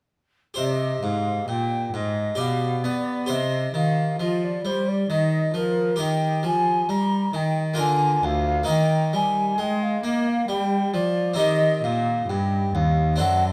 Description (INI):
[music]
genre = classical, baroque-style sonata movement with continuo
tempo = 66 BPM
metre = 3/4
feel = straight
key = C minor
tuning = A4 = 443 Hz
[part]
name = harpsichord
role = accompaniment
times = 0.5-13.5 s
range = D2 to D5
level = -29 LUFS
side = equal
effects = none
[part]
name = baroque flute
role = melody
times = 0.6-13.4 s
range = Bb4 to Bb5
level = -28 LUFS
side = equal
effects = none
[part]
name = warm cello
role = bass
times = 0.6-13.5 s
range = D2 to B3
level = -27 LUFS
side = equal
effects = none
[sound]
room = light reverb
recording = close, detailed microphones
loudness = -23 LUFS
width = mono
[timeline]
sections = 0.6-13.5 A section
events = none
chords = 0.6 C5; 2.4 G7/B; 3.3 Cm; 6.0 Eb; 7.8 Bb7/D; 8.7 Eb; 11.4 Cm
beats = | 0.57 1.48 2.39 | 3.29 4.20 5.10 | 5.99 6.89 7.79 | 8.69 9.59 10.49 | 11.38 12.29 13.20